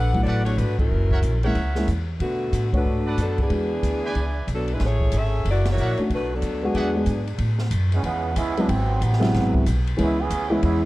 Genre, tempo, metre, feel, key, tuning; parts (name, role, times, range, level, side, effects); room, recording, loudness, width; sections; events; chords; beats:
jazz, big band swing; 185 BPM; 4/4; swing 64% on 8ths; A major; A4 = 440 Hz
clear saxophone section; melody; 0.0-7.3 s; D3 to F#5; -27 LUFS; left 1 dB; tape echo
upright bass; bass; 0.0-10.9 s; F#1 to B2; -23 LUFS; equal
warm grand piano; accompaniment; 0.1-3.7, 6.0-10.9 s; B#2 to C#5; -24 LUFS; left 1 dB
open jazz drum kit; drums; 0.1-10.7 s; hi-hat, kick drum, ride cymbal, snare drum; -29 LUFS; equal
brilliant trumpet section; stabs; 0.3-6.9 s; G#4 to A5; -33 LUFS; right 2 dB
muted trombone section; second line; 7.9-10.9 s; B#2 to G#4; -26 LUFS; right 4 dB
light reverb; dark, warm production; -20 LUFS; side -18 dB against mid
0.0-7.4 A section; 7.4-10.9 B section
band accent 0.8, 2.7, 5.6; trombone section solo 7.4-10.9
0.0 D6; 0.9 F#7; 2.2 Bm7; 3.5 E7; 4.8 Amaj7; 5.5 F#7b13; 6.1 Bm7; 6.8 E9; 7.4 Amaj9; 8.7 G#7alt; 10.0 C#m7
0.27 0.59 | 0.92 1.24 1.56 1.89 | 2.21 2.54 2.86 3.19 | 3.51 3.83 4.16 4.48 | 4.81 5.13 5.45 5.78 | 6.10 6.43 6.75 7.07 | 7.40 7.72 8.04 8.37 | 8.69 9.01 9.34 9.66 | 9.98 10.31 10.63